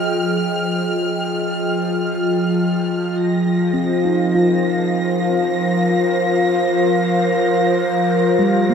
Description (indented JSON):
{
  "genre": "ambient",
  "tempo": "free time",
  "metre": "none",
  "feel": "none",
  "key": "F minor",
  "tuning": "A4 = 444 Hz",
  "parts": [
    { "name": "airy breathy pad", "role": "sustained chords", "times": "0.0-8.7 s", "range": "F3 to G5", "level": "-16 LUFS", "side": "left 1 dB", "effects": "chorus" },
    { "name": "clear studio violin section", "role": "texture", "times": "0.0-8.7 s", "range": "F6 to Bb6", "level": "-26 LUFS", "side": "right 1 dB", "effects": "none" },
    { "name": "handpan", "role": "arpeggios", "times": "3.7-8.7 s", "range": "G3 to F4", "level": "-24 LUFS", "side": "right 1 dB", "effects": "ping-pong delay" }
  ],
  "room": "wet cathedral reverb, RT60 5.1 s",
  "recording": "none",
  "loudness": "-16 LUFS",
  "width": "side -7 dB against mid",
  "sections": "0.0-8.7 A section",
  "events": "none",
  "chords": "0.0 Fm7",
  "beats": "free time"
}